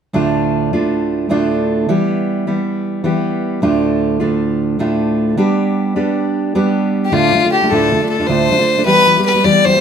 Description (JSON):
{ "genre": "celtic folk", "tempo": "103 BPM (dotted quarters)", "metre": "9/8", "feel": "straight", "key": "D dorian", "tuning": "A4 = 440 Hz", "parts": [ { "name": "fingerpicked steel-string acoustic guitar", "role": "accompaniment", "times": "0.1-9.8 s", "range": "D2 to G4", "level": "-14 LUFS", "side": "right 2 dB", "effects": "none" }, { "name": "rich fiddle", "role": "melody", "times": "7.0-9.8 s", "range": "F4 to D5", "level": "-12 LUFS", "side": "left 3 dB", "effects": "none" } ], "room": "moderate studio reverb, RT60 0.7 s", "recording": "band playing live in one room", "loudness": "-13 LUFS", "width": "side -7 dB against mid", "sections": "0.1-7.1 A section; 7.1-9.8 B section", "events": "none", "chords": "0.1 Dm; 1.9 Em; 3.6 Dm; 5.4 G; 7.1 Dm; 8.9 Em", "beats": "| 0.14 0.72 1.31 | 1.89 2.47 3.06 | 3.64 4.22 4.80 | 5.38 5.96 6.54 | 7.12 7.70 8.28 | 8.86 9.43" }